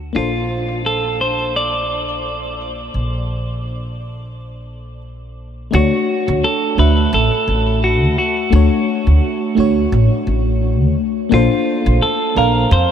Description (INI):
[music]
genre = sunset chillout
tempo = 86 BPM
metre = 4/4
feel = swing 56% on 16ths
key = unclear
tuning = A4 = 441 Hz
[part]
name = mellow FM electric piano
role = accompaniment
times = 0.0-12.9 s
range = A3 to F5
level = -19 LUFS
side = moving between left 7 dB and right 4 dB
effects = chorus, phaser, auto-pan, tape echo
[part]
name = upright bass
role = bass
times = 0.0-12.9 s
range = A1 to F2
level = -18 LUFS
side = equal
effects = none
[part]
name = clean electric guitar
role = melody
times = 0.2-12.9 s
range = F4 to D5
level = -20 LUFS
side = equal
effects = vintage 12-bit sampler grit, tape echo
[sound]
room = moderate huge ambient reverb, RT60 7.3 s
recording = dreamy mix soaked in reverb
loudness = -14 LUFS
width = side -8 dB against mid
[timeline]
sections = 0.0-5.7 A section; 5.7-12.9 B section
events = none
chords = 0.2 Bbmaj9; 5.7 Dmaj7; 11.3 Bbmaj9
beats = | 0.15 0.85 1.55 2.25 | 2.94 3.64 4.34 5.04 | 5.74 6.43 7.13 7.83 | 8.53 9.22 9.92 10.62 | 11.32 12.02 12.71